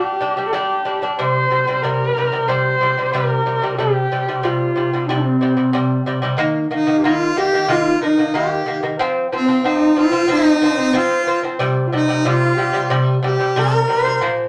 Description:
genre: mongolian traditional, Mongolian folk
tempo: 92 BPM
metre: 4/4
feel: straight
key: C yu mode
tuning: A4 = 436 Hz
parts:
  - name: dark horsehead fiddle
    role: melody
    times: 0.0-14.2 s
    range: C4 to C5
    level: -20 LUFS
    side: equal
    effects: none
  - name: lute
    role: arpeggios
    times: 0.0-14.5 s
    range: Bb2 to D4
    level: -22 LUFS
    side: equal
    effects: none
  - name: clear harmonica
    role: second line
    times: 6.7-14.2 s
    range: C4 to Bb4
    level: -23 LUFS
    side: equal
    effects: none
room: wet studio reverb, RT60 0.6 s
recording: none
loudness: -18 LUFS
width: mono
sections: 0.0-6.4 A section; 6.4-14.5 B section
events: none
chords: 0.0 G5; 1.2 C5; 6.4 Eb5; 9.0 F5; 11.6 C5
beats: 0.54 | 1.19 1.84 2.49 3.14 | 3.79 4.45 5.10 5.75 | 6.40 7.05 7.70 8.35 | 9.01 9.66 10.31 10.96 | 11.62 12.27 12.92 13.58 | 14.23

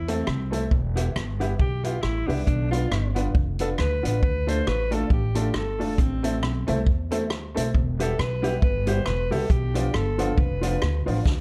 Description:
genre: ska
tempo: 137 BPM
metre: 4/4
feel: swing 57% on 8ths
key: unclear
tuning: A4 = 443 Hz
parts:
  - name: warm alto saxophone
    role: melody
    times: 0.0-11.1 s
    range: C4 to C5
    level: -32 LUFS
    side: equal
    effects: none
  - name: upright bass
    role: bass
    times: 0.0-11.4 s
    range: E1 to E2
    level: -29 LUFS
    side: equal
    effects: none
  - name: mellow electric guitar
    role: accompaniment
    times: 0.1-11.2 s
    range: F4 to E5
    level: -36 LUFS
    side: equal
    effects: tape echo
  - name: clear upright piano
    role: stabs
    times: 0.1-11.2 s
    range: F3 to B4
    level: -33 LUFS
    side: equal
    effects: none
  - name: vintage drum kit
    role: drums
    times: 0.1-11.4 s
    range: hi-hat, kick drum, rim click, snare drum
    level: -28 LUFS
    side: equal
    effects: none
room: light reverb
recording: dark, warm production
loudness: -24 LUFS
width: mono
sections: 0.0-11.4 A section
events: alto saxophone solo 0.0-11.4; drum fill 11.3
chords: 0.0 Am; 0.7 Em; 2.5 Bdim; 4.2 Dm; 6.0 Am; 7.7 Em; 9.5 Bdim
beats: 0.27 | 0.71 1.15 1.59 2.03 | 2.47 2.91 3.35 3.79 | 4.23 4.67 5.11 5.54 | 5.99 6.42 6.86 7.30 | 7.74 8.18 8.62 9.06 | 9.50 9.94 10.38 10.82 | 11.26

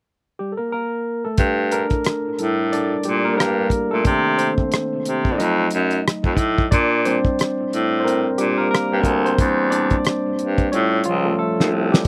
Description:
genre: R&B, neo-soul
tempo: 90 BPM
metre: 4/4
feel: swing 59% on 16ths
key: G minor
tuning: A4 = 440 Hz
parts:
  - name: barky tine electric piano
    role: accompaniment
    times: 0.4-12.1 s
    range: Eb3 to Eb5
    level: -23 LUFS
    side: equal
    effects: overdrive, slapback echo
  - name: clear baritone saxophone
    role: bass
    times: 1.4-12.0 s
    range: B#1 to C3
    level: -23 LUFS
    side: equal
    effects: none
  - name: cloth-damped thuddy drum kit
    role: drums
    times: 1.4-12.1 s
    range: hi-hat, kick drum, rim click, snare drum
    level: -23 LUFS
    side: equal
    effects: none
room: little or no reverb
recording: recorded outdoors, with no room sound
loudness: -20 LUFS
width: mono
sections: 0.0-1.4 A section; 1.4-12.1 B section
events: tine electric piano solo 1.4-12.1; drum fill 11.4-12.1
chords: 0.0 Gmadd9; 1.4 Gm69; 4.1 Cm9; 5.4 F7b9; 6.7 Bb69; 9.4 Em7b5; 10.7 A7alt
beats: 0.05 0.72 | 1.39 2.05 2.72 3.39 | 4.05 4.72 5.39 6.05 | 6.72 7.39 8.05 8.72 | 9.39 10.05 10.72 11.39 | 12.05

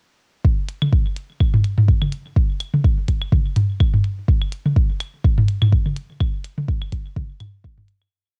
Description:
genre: techno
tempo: 125 BPM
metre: 4/4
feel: swing 56% on 16ths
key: none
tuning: none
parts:
  - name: electronic kick drum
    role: drums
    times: 0.4-7.8 s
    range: none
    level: -20 LUFS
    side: equal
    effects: cassette tape
  - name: electronic hi-hat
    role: drums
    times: 0.7-8.0 s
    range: none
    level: -41 LUFS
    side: equal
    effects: cassette tape
  - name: electronic toms and claves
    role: percussion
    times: 0.8-8.1 s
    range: none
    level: -21 LUFS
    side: equal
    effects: cassette tape
room: little or no reverb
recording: home recording on cassette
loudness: -20 LUFS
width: mono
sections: 0.4-8.1 groove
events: fade-out 5.6-8.1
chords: none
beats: | 0.44 0.92 1.40 1.88 | 2.36 2.84 3.32 3.80 | 4.28 4.76 5.24 5.72 | 6.20 6.68 7.16 7.64

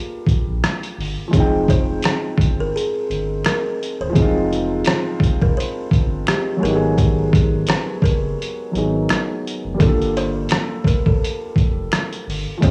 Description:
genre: lo-fi hip hop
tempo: 85 BPM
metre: 4/4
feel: swing 56% on 16ths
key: F dorian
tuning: A4 = 444 Hz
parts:
  - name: buzzing kalimba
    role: melody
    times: 0.0-12.7 s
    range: F4 to C5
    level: -28 LUFS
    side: equal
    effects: tape echo
  - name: dark upright piano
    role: accompaniment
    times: 0.0-12.7 s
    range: F3 to G5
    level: -26 LUFS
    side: equal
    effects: none
  - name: trip hop sampler-style drum kit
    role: drums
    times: 0.3-12.7 s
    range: hi-hat, kick drum, rim click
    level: -20 LUFS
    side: equal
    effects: vintage 12-bit sampler grit
  - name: sub bass with octave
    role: bass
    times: 0.5-12.7 s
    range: Eb1 to Bb1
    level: -26 LUFS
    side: equal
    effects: transformer saturation
  - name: finger snap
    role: percussion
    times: 2.0-12.1 s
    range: none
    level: -34 LUFS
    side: equal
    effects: none
room: small room ambience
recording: dry, gritty hardware recording, cassette tape, studio reverb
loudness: -19 LUFS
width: mono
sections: 0.0-1.3 A section; 1.3-12.7 B section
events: none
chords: 0.0 Gm7; 1.3 Fm9; 6.6 Abm9; 9.8 Gm9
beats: 0.62 | 1.33 2.03 2.74 3.44 | 4.15 4.86 5.56 6.27 | 6.97 7.68 8.38 9.09 | 9.80 10.50 11.21 11.91 | 12.62

